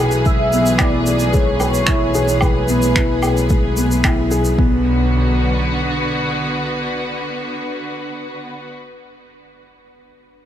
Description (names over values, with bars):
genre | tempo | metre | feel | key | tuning
piano and strings electronica | 111 BPM | 4/4 | straight | B dorian | A4 = 440 Hz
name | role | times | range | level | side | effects
rich symphonic string section | sustained chords | 0.0-8.8 s | D3 to B4 | -23 LUFS | equal | sidechain pumping
dark grand piano | riff | 0.0-10.5 s | G#3 to B4 | -21 LUFS | left 2 dB | digital delay
bright studio double bass section | bass | 0.0-6.2 s | B1 | -20 LUFS | equal | tube saturation, sidechain pumping
shaker, woodblock and finger snaps | drums | 0.1-4.6 s | none | -23 LUFS | equal | none
warm velvety synth lead | melody | 0.3-4.0 s | B4 to E5 | -22 LUFS | equal | chorus
electronic kick drum | drums | 0.3-4.7 s | none | -18 LUFS | equal | none
room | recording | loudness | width
small room ambience | none | -15 LUFS | side -10 dB against mid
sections
0.0-4.6 A section; 4.6-8.9 B section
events
drop 0.0-4.6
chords
0.0 E/B; 4.6 Bm